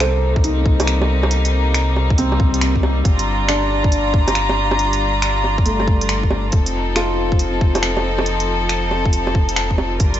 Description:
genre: future garage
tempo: 138 BPM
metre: 4/4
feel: swing 65% on 16ths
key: unclear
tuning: A4 = 440 Hz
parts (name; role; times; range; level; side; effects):
- felt-muted upright piano; accompaniment; 0.0-10.0 s; A3 to C5; -24 LUFS; equal; sidechain pumping, tape echo
- rich chamber string section; sustained chords; 0.0-10.2 s; C3 to Bb5; -21 LUFS; left 1 dB; sidechain pumping
- warm sub bass; bass; 0.0-10.2 s; F1 to C2; -20 LUFS; equal; tube saturation, sidechain pumping
- organic electronic drum kit; drums; 0.0-10.2 s; bongos, finger snaps, hi-hat; -23 LUFS; right 2 dB; studio reverb
- electronic kick drum; drums; 0.4-10.1 s; none; -16 LUFS; equal; studio reverb
room: light reverb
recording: nothing above 7.8 kHz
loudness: -15 LUFS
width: side -11 dB against mid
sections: 0.0-10.2 A section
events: none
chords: 0.0 Cm7; 3.0 Gm7; 6.5 F7

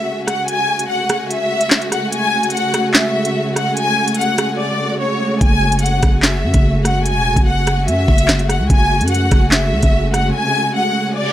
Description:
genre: hip hop, drill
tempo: 146 BPM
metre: 4/4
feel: half-time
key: F# minor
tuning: A4 = 441 Hz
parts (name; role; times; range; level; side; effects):
- rich studio violin section; melody; 0.0-11.3 s; C#5 to G#5; -18 LUFS; left 1 dB; digital delay
- dark symphonic string section; sustained chords; 0.0-11.3 s; C#3 to F#4; -21 LUFS; right 1 dB; none
- drill drum kit; drums; 0.3-10.2 s; handclaps, hi-hat, kick drum, rim click, snare drum; -15 LUFS; equal; none
- growling 808-style bass; bass; 5.4-10.3 s; E1 to F#2; -17 LUFS; equal; none
- reverse cymbal; sound effects; 11.2-11.3 s; none; -24 LUFS; right 4 dB; none
room: digital ambience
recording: none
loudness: -13 LUFS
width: side -12 dB against mid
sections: 0.0-11.3 A section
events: break 0.0-5.4, 10.3-11.3; reverse cymbal 11.2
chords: 0.0 F#madd9

